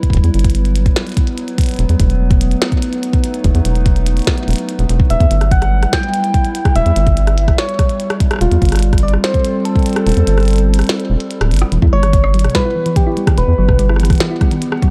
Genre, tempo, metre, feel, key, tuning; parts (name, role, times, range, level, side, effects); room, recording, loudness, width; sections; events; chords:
IDM; 145 BPM; 4/4; straight; A4 = 444 Hz
warbly tape-like pad; sustained chords; 0.0-14.9 s; F#3 to F#5; -24 LUFS; equal; chorus, built-in reverb
electronic kick drum; drums; 0.0-14.9 s; -16 LUFS; equal; small room ambience
glitchy drum kit; drums; 0.0-14.9 s; hi-hat, rim click, snare drum; -24 LUFS; equal; small room ambience
rubbery square bass; bass; 0.1-14.1 s; D1 to E2; -16 LUFS; equal
soft struck synth lead; melody; 5.1-14.2 s; F4 to G5; -22 LUFS; equal; chorus, digital delay
thumb-piano-like synth pluck; arpeggios; 11.7-14.9 s; B2 to E4; -22 LUFS; equal; chorus, delay
little or no reverb; dark, warm production; -14 LUFS; mono
0.0-11.7 A section; 11.7-14.9 A section
kick drops out 10.1-11.7; drum fill 11.5
0.0 Emadd9; 1.8 B7/E; 5.1 Emadd9; 8.4 Fadd9; 11.7 Emadd9